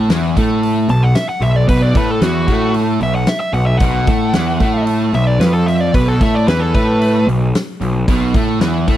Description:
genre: blues rock power trio and southern rock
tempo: 113 BPM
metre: 4/4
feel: straight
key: B minor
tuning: A4 = 440 Hz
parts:
  - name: fuzz guitar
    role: riff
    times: 0.0-9.0 s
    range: B2 to A3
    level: -16 LUFS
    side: equal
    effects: distortion
  - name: fuzz picked electric bass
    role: bass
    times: 0.0-9.0 s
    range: B1 to A2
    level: -18 LUFS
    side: equal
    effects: overdrive
  - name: huge arena drum kit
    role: drums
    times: 0.1-9.0 s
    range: hi-hat, kick drum, snare drum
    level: -18 LUFS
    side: equal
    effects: none
  - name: nasal lead guitar with a parked wah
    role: melody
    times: 0.9-7.3 s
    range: F#4 to A5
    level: -19 LUFS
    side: left 1 dB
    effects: overdrive
room: small room reverb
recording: dry, close 1970s-style studio recording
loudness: -12 LUFS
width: side -12 dB against mid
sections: 0.0-9.0 A section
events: lead electric guitar solo 0.0-9.0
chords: 0.0 B5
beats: 0.10 0.63 1.16 | 1.69 2.22 2.75 3.28 | 3.81 4.34 4.88 5.41 | 5.94 6.47 7.01 7.54 | 8.07 8.61

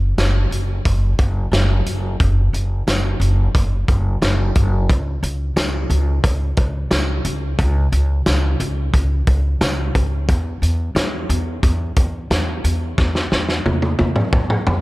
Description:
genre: dream pop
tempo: 89 BPM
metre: 4/4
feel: straight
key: unclear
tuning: A4 = 442 Hz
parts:
  - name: upright bass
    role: bass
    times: 0.0-14.8 s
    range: F#1 to E2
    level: -18 LUFS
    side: equal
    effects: none
  - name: loose indie drum kit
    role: drums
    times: 0.2-14.8 s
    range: hi-hat, kick drum, snare drum, tambourine, toms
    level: -19 LUFS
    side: equal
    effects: none
room: light reverb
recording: none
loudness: -16 LUFS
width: side -20 dB against mid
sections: 0.0-14.8 A section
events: drum fill 13.0-14.8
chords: none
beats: 0.17 0.85 1.52 | 2.20 2.87 3.55 4.22 | 4.89 5.57 6.24 6.92 | 7.59 8.27 8.94 9.61 | 10.29 10.96 11.64 12.31 | 12.98 13.66 14.33

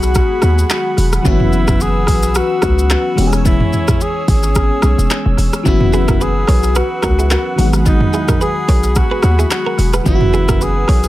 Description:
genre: afrobeats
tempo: 109 BPM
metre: 4/4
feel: swing 55% on 16ths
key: unclear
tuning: A4 = 440 Hz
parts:
  - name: breathy alto saxophone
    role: melody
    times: 0.0-11.1 s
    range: D#4 to G#4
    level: -20 LUFS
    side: left 2 dB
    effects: tape echo
  - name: FM electric piano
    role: accompaniment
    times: 0.0-11.1 s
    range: D#3 to G#4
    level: -20 LUFS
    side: left 2 dB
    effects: chorus, phaser
  - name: warm analog pad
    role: sustained chords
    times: 0.0-11.1 s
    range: G#4 to E6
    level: -26 LUFS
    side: right 2 dB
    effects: chorus
  - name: hard-hitting 808-style bass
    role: bass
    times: 0.0-11.1 s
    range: E1 to D#2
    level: -15 LUFS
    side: equal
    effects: none
  - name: deep house drum kit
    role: drums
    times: 0.0-11.1 s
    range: handclaps, hi-hat, kick drum, rim click, shaker, toms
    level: -16 LUFS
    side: equal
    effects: tape echo
  - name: direct-recorded clean electric guitar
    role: riff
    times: 5.9-11.0 s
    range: E4 to C#5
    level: -23 LUFS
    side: right 5 dB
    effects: tape echo
room: little or no reverb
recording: echo-heavy mix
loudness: -11 LUFS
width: side -15 dB against mid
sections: 0.0-11.1 A section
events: none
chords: 0.0 G#m7; 1.3 F#7sus4; 3.2 E6; 5.7 F#7sus4; 7.6 G#m7; 10.1 F#7sus4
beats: 0.15 0.70 | 1.25 1.80 2.35 2.90 | 3.46 4.00 4.56 5.11 | 5.66 6.21 6.76 7.31 | 7.86 8.41 8.96 9.51 | 10.06 10.61

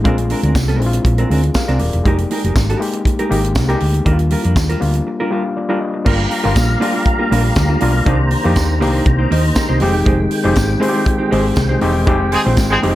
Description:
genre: disco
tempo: 120 BPM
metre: 4/4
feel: straight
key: F dorian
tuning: A4 = 440 Hz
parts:
  - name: mellow electric guitar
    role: accompaniment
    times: 0.0-12.9 s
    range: G3 to C5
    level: -22 LUFS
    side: right 2 dB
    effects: none
  - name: overdriven reed electric piano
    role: accompaniment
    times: 0.0-12.9 s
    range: G3 to F5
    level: -20 LUFS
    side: left 3 dB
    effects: none
  - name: hollow-body short-scale fingered electric bass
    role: bass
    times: 0.0-12.9 s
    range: Eb1 to F2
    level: -16 LUFS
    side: equal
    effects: none
  - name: tight funk drum kit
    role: drums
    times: 0.1-12.9 s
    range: crash cymbal, hi-hat, kick drum, snare drum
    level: -19 LUFS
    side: equal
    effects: none
  - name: tambourine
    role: percussion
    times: 0.6-12.7 s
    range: none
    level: -31 LUFS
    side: right 2 dB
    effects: none
  - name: tonewheel organ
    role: sustained chords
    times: 6.1-12.9 s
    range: Eb3 to Bb5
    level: -21 LUFS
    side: right 1 dB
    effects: chorus vibrato, slow rotary speaker
  - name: clear horn section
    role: stabs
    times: 12.3-12.8 s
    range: Ab3 to Ab4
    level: -16 LUFS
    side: right 1 dB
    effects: none
room: studio ambience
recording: none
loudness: -13 LUFS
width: side -14 dB against mid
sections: 0.0-6.1 A section; 6.1-12.9 B section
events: reed electric piano fill 1.3-2.1, 5.1-6.1; break 5.1-6.1; band accent 12.1-12.9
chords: 0.0 Bb9; 2.1 Fm11; 4.1 Ebmaj9; 6.1 Gm7; 8.1 Cm7; 9.8 Fm9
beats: | 0.05 0.55 1.05 1.55 | 2.05 2.55 3.05 3.56 | 4.06 4.56 5.06 5.56 | 6.06 6.56 7.06 7.56 | 8.06 8.56 9.06 9.56 | 10.07 10.57 11.07 11.57 | 12.07 12.57

